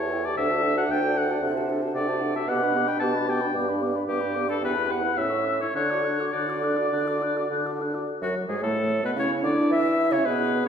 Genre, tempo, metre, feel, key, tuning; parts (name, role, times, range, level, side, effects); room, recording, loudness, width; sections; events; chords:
quick classical-period movement for wind quintet; 102-114 BPM; 4/4; rubato; D major; A4 = 439 Hz
mellow hollow concert flute; melody; 0.0-10.7 s; F#4 to F#6; -33 LUFS; left 6 dB
warm oboe; second line; 0.0-10.7 s; F#4 to A5; -27 LUFS; left 2 dB
mellow French horn; accompaniment; 0.0-10.7 s; F#3 to G4; -29 LUFS; equal
warm clarinet; accompaniment; 0.0-10.7 s; E4 to D5; -31 LUFS; right 4 dB
warm bassoon; bass; 0.0-10.7 s; D2 to E3; -28 LUFS; right 2 dB
wet recital hall reverb, RT60 1.5 s; heard from further back in the room, lossy compression artefacts; -22 LUFS; side -7 dB against mid
0.0-8.1 A section; 8.1-10.7 B section
0.4 D; 1.4 D7/C; 2.5 G/B; 3.6 G; 4.6 Em; 5.2 A; 5.8 D; 8.1 A